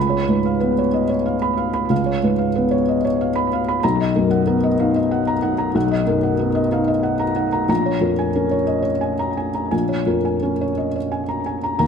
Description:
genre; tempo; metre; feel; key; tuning
neoclassical minimalist piano; 57-63 BPM (dotted quarters); 6/8; rubato; unclear; A4 = 441 Hz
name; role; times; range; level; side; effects
felt-muted upright piano; solo; 0.0-11.9 s; Bb1 to Cb6; -17 LUFS; equal; slapback echo
room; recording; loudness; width
light reverb; close, detailed microphones; -17 LUFS; side -6 dB against mid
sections
0.0-11.8 A section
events
none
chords
0.0 Db7; 3.8 Bmaj7; 7.7 Bbm7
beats
0.94 | 1.91 2.87 | 3.83 4.79 | 5.75 6.72 | 7.69 8.70 | 9.73 10.77 | 11.80

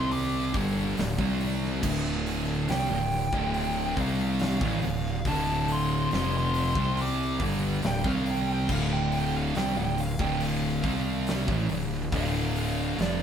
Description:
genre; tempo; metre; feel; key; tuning
stoner and doom metal; 70 BPM; 4/4; straight; D minor; A4 = 440 Hz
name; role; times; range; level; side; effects
fuzz lead guitar; melody; 0.0-13.2 s; D5 to D6; -32 LUFS; right 1 dB; wah, distortion
thick fuzz guitar; riff; 0.0-13.2 s; D2 to C4; -30 LUFS; left 5 dB; distortion
thick fuzz guitar; riff; 0.0-13.2 s; D2 to C4; -30 LUFS; right 7 dB; distortion
fuzz fingered electric bass; bass; 0.0-13.2 s; D1 to C2; -32 LUFS; equal; overdrive
big rock drum kit; drums; 0.1-13.2 s; crash cymbal, hi-hat, kick drum, snare drum; -33 LUFS; equal; none
room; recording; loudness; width
moderate stone room reverb, RT60 1.3 s; band playing live in one room; -25 LUFS; side -8 dB against mid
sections
0.0-13.2 A section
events
lead electric guitar solo 0.0-13.2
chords
0.0 Dm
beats
0.12 0.98 | 1.84 2.70 3.56 4.41 | 5.27 6.13 6.99 7.84 | 8.70 9.56 10.41 11.27 | 12.13 12.99

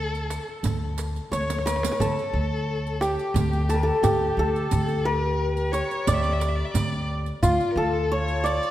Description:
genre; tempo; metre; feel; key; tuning
Persian modal ensemble; 88 BPM; 4/4; straight; D avaz esfahan; A4 = 440 Hz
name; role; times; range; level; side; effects
santur; melody; 0.0-8.7 s; F4 to D5; -26 LUFS; equal; none
warm violin; second line; 0.0-8.7 s; F4 to E5; -32 LUFS; left 3 dB; none
upright bass; bass; 0.0-8.6 s; D2; -27 LUFS; equal; none
riq; percussion; 0.1-8.7 s; none; -35 LUFS; right 5 dB; none
tombak; percussion; 0.3-8.7 s; none; -29 LUFS; right 3 dB; none
room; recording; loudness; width
moderate scoring stage reverb, RT60 1.6 s; none; -22 LUFS; side -13 dB against mid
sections
0.0-8.7 A section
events
drum fill 1.3-2.0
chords
none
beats
0.64 1.32 | 2.00 2.68 3.36 4.04 | 4.71 5.39 6.07 6.75 | 7.43 8.11

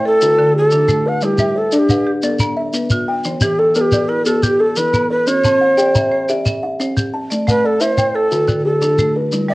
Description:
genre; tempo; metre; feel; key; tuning
southern african traditional, mbira-style interlocking cycle; 118 BPM (dotted quarters); 12/8; straight; unclear; A4 = 440 Hz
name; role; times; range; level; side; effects
breathy Native American-style cedar flute; melody; 0.0-9.5 s; G4+25c to F#5-45c; -15 LUFS; equal; cassette tape
buzzing kalimba; arpeggios; 0.0-9.5 s; D3 to B5-29c; -19 LUFS; left 1 dB; cassette tape
marimba with hard mallets; arpeggios; 0.0-9.5 s; D3 to E5; -22 LUFS; right 1 dB; cassette tape
shekere; percussion; 0.2-9.5 s; none; -19 LUFS; equal; none
room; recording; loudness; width
wet studio reverb, RT60 0.6 s; home recording on cassette; -13 LUFS; side -20 dB against mid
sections
0.0-9.5 A section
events
none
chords
0.2 D; 1.2 G; 2.2 Bm; 3.2 Em; 5.3 C; 7.3 Am; 8.3 D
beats
0.21 0.72 | 1.22 1.73 2.24 2.74 | 3.25 3.76 4.26 4.77 | 5.28 5.78 6.29 6.80 | 7.30 7.81 8.31 8.82 | 9.32

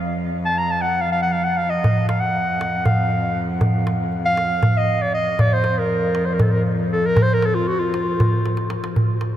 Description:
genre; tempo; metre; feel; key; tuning
Turkish makam ensemble; 236 BPM (eighths); 7/8; straight; F makam hicaz; A4 = 439 Hz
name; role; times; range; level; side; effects
clear clarinet; melody; 0.0-8.7 s; F4 to Bb5; -21 LUFS; equal; none
warm cello; drone; 0.0-9.0 s; F2; -25 LUFS; equal; stereo widening
darbuka; percussion; 1.8-9.3 s; none; -20 LUFS; equal; none
room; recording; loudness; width
wet huge ambient reverb, RT60 8.2 s; in a vast, echoing space; -17 LUFS; side -11 dB against mid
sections
0.0-9.0 A section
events
drum fill 8.5-9.0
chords
none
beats
| 0.05 0.31 0.56 0.82 1.07 1.33 1.58 | 1.84 2.09 2.35 2.60 2.86 3.11 3.37 | 3.62 3.88 4.13 4.38 4.64 4.89 5.15 | 5.40 5.66 5.91 6.17 6.42 6.67 6.93 | 7.18 7.44 7.69 7.95 8.20 8.45 8.71 | 8.96 9.22

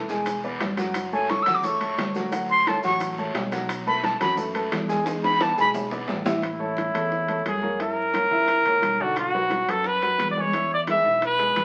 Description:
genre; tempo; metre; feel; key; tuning
latin, salsa; 175 BPM; 4/4; straight; A major; A4 = 441 Hz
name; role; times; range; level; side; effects
clear grand piano; accompaniment; 0.0-11.6 s; D3 to G#5; -31 LUFS; equal; none
fingered electric bass; bass; 0.0-11.6 s; E1 to F#2; -38 LUFS; equal; none
bongos; percussion; 0.1-11.6 s; none; -38 LUFS; equal; none
congas; percussion; 0.1-11.6 s; none; -38 LUFS; equal; none
guiro; percussion; 0.1-6.4 s; none; -41 LUFS; equal; none
maracas; percussion; 0.1-6.4 s; none; -50 LUFS; equal; none
timbales; percussion; 0.3-11.6 s; none; -36 LUFS; equal; none
breathy bright concert flute; melody; 1.1-5.7 s; G#5 to E6; -25 LUFS; equal; none
clear trumpet; melody; 6.5-11.6 s; E4 to E5; -24 LUFS; equal; none
room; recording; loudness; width
wet large studio reverb, RT60 1.1 s; very old 78 rpm record, vinyl crackle; -24 LUFS; mono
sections
0.0-6.4 A section; 6.4-11.6 B section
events
flute solo 0.0-6.4; drum fill 5.1-6.4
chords
0.3 E7; 1.0 F#m; 2.3 Dmaj7; 3.7 B5; 5.1 E7; 6.4 A; 7.8 F#7; 9.2 Bm; 10.5 E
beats
0.27 0.61 | 0.95 1.30 1.64 1.98 | 2.32 2.67 3.01 3.35 | 3.69 4.04 4.38 4.72 | 5.06 5.40 5.75 6.09 | 6.43 6.77 7.12 7.46 | 7.80 8.14 8.49 8.83 | 9.17 9.51 9.86 10.20 | 10.54 10.88 11.22 11.57

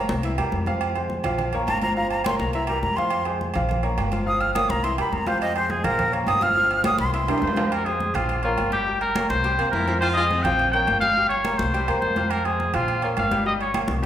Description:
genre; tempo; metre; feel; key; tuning
latin, salsa; 209 BPM; 4/4; straight; F minor; A4 = 440 Hz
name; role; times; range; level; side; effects
warm grand piano; accompaniment; 0.0-14.1 s; E3 to G5; -28 LUFS; left 1 dB; none
upright bass; bass; 0.0-14.1 s; G1 to F2; -29 LUFS; left 1 dB; none
congas; percussion; 0.1-14.1 s; none; -30 LUFS; left 1 dB; none
agogo bells and timbales; percussion; 0.2-14.1 s; none; -29 LUFS; right 6 dB; none
breathy concert flute; melody; 1.7-7.7 s; Ab4 to F6; -24 LUFS; equal; none
warm trumpet; melody; 7.4-13.9 s; F4 to G5; -23 LUFS; left 1 dB; none
warm baritone saxophone; second line; 9.6-10.8 s; C4 to F4; -28 LUFS; left 1 dB; none
room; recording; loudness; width
wet recital hall reverb, RT60 1.5 s; recorded in a church or concert hall; -20 LUFS; side -10 dB against mid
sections
0.0-7.7 A section; 7.7-14.1 B section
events
flute solo 0.0-7.7; drum fill 7.3-7.7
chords
0.2 C7; 0.8 Fm; 1.4 Bbm; 2.0 Gm7b5; 2.5 C7; 3.1 Fm; 3.7 Bbm; 4.3 Gm7b5; 4.8 C7; 5.4 Fm; 6.0 Bbm; 6.6 Gm7b5; 7.1 C7; 7.7 Fm; 8.3 Bbm; 8.9 Gdim; 9.4 C7; 10.0 Fm7; 10.6 Bbm; 11.2 Gdim; 11.7 C7; 12.3 Fm; 12.9 Bbm; 13.5 Gdim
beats
0.24 0.53 | 0.82 1.10 1.39 1.68 | 1.97 2.25 2.54 2.83 | 3.12 3.40 3.69 3.98 | 4.27 4.55 4.84 5.13 | 5.42 5.71 5.99 6.28 | 6.57 6.85 7.14 7.43 | 7.72 8.00 8.29 8.58 | 8.87 9.15 9.44 9.73 | 10.01 10.30 10.59 10.88 | 11.16 11.45 11.74 12.02 | 12.31 12.60 12.88 13.17 | 13.46 13.75 14.03

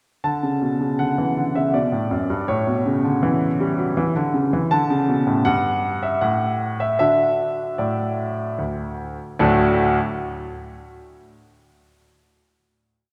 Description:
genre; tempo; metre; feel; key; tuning
classical-period piano sonatina; 74-81 BPM; 3/4; straight; D major; A4 = 440 Hz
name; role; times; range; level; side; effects
clear grand piano; solo; 0.2-10.0 s; D2 to A5; -21 LUFS; equal; none
room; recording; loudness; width
wet church reverb, RT60 2.6 s; recorded in a church or concert hall; -21 LUFS; mono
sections
0.2-9.4 A section; 9.4-11.7 final chord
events
none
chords
0.2 D; 2.5 A7 (rootless); 4.7 D5; 5.5 N.C.; 7.0 D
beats
| 0.24 1.00 1.74 | 2.48 3.23 3.97 | 4.71 5.46 6.22 | 6.99 7.78 8.59 | 9.39

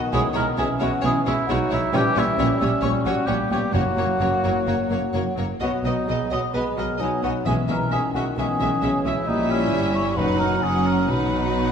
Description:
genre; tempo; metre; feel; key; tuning
quick classical-period movement for symphony orchestra; 131 BPM; 4/4; rubato; B major; A4 = 440 Hz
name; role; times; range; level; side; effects
mellow clarinet; second line; 0.0-11.7 s; A#3 to E4; -30 LUFS; left 1 dB; none
mellow hollow concert flute; second line; 0.0-11.7 s; C#5 to E6; -29 LUFS; left 3 dB; none
warm bassoon; accompaniment; 0.0-11.7 s; C#3 to G#3; -29 LUFS; right 2 dB; none
rich studio violin section; melody; 0.1-11.7 s; C#5 to F#5; -33 LUFS; left 3 dB; none
bright chamber violin section; second line; 0.1-11.7 s; A#3 to E4; -32 LUFS; left 2 dB; none
mellow oboe; second line; 0.1-11.7 s; C#4 to E5; -27 LUFS; equal; none
rich chamber viola section; accompaniment; 0.1-11.7 s; F#3 to G#3; -32 LUFS; equal; none
mellow French horn section; sustained chords; 0.1-11.7 s; E3 to E4; -30 LUFS; left 2 dB; none
warm chamber double bass section; bass; 0.1-11.7 s; F#1 to B1; -28 LUFS; right 3 dB; none
warm symphonic cello section; bass; 0.1-11.7 s; F#2 to B2; -29 LUFS; right 2 dB; none
timpani; percussion; 3.7-4.4, 7.5-11.7 s; F#2 to B2; -30 LUFS; left 2 dB; none
room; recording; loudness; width
wet scoring stage reverb, RT60 1.6 s; minimal, uncompressed stereo recording; -19 LUFS; side -7 dB against mid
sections
0.0-11.7 A section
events
none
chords
0.1 C#m7/B; 1.9 A#dim7; 3.7 F#; 5.6 B; 7.5 C#m7/B; 9.3 A#dim7; 10.2 B/F#; 10.6 F#; 11.1 B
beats
| 0.12 0.57 1.03 1.48 | 1.93 2.38 2.83 3.28 | 3.74 4.21 4.67 5.14 | 5.61 6.08 6.54 7.00 | 7.46 7.91 8.37 8.83 | 9.28 9.72 10.17 10.63 | 11.10 11.57

